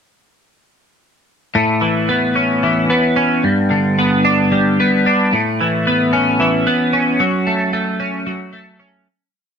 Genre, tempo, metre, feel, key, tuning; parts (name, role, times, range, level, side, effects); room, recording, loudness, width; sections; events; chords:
rock; 223 BPM (eighths); 7/8; straight; A mixolydian; A4 = 441 Hz
twelve-string electric guitar; solo; 1.6-9.1 s; G2 to D4; -13 LUFS; equal; rotary speaker
moderate studio reverb, RT60 0.7 s; band playing live in one room; -13 LUFS; side -7 dB against mid
1.6-9.1 verse
fade-out 7.2-9.1
1.6 Aadd9; 3.4 G; 5.3 Aadd9; 7.2 F#m